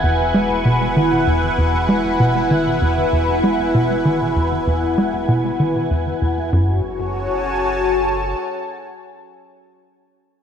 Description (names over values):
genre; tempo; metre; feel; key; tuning
ambient, sequencer-driven space music; 97 BPM; 4/4; straight; F# dorian; A4 = 440 Hz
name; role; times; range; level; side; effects
lush unison pad; sustained chords; 0.0-9.8 s; E4 to A5; -18 LUFS; left 1 dB; chorus, phaser
tight sequencer bass; riff; 0.0-6.8 s; E2 to G#3; -18 LUFS; equal; tape echo
warm sub bass; bass; 0.0-8.3 s; E1 to F#1; -34 LUFS; equal; none
wind-like tuned noise texture; texture; 0.0-6.5 s; G#5; -35 LUFS; right 7 dB; built-in reverb
room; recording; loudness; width
wet scoring stage reverb, RT60 2.0 s; none; -16 LUFS; side -8 dB against mid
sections
0.0-6.5 A section; 6.5-9.0 B section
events
fade-out on sub bass 0.0-6.5; filter sweep on analog synth bass 0.0-6.5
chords
0.0 E; 6.5 F#madd9